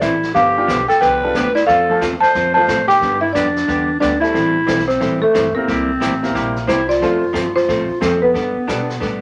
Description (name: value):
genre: country, western swing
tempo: 180 BPM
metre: 4/4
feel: swing 64% on 8ths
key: unclear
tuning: A4 = 441 Hz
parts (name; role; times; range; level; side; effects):
- buzzing marimba with medium hard mallets; melody; 0.0-9.2 s; A4 to A5; -20 LUFS; equal; none
- growling clarinet; second line; 0.0-9.2 s; A3 to C5; -20 LUFS; equal; none
- archtop guitar, miked and amplified; accompaniment; 0.0-9.2 s; C3 to A4; -24 LUFS; equal; none
- upright bass; bass; 0.0-9.2 s; G1 to B2; -30 LUFS; equal; none
- jazz brush drum kit; drums; 0.0-9.2 s; brushed snare drum, hi-hat, kick drum, snare drum; -31 LUFS; equal; none
- bright upright piano; accompaniment; 0.6-8.9 s; F3 to C5; -25 LUFS; equal; none
room: moderate studio reverb, RT60 0.5 s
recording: nothing above 10.7 kHz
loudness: -16 LUFS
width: mono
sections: 0.0-9.2 A section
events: none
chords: 0.4 G7; 1.7 F; 3.0 G; 4.4 Am7; 5.7 C7; 7.0 F; 8.4 Gadd9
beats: 0.02 | 0.35 0.69 1.02 1.35 | 1.69 2.02 2.35 2.69 | 3.02 3.35 3.69 4.02 | 4.35 4.69 5.02 5.35 | 5.69 6.02 6.35 6.69 | 7.02 7.35 7.69 8.02 | 8.35 8.69 9.02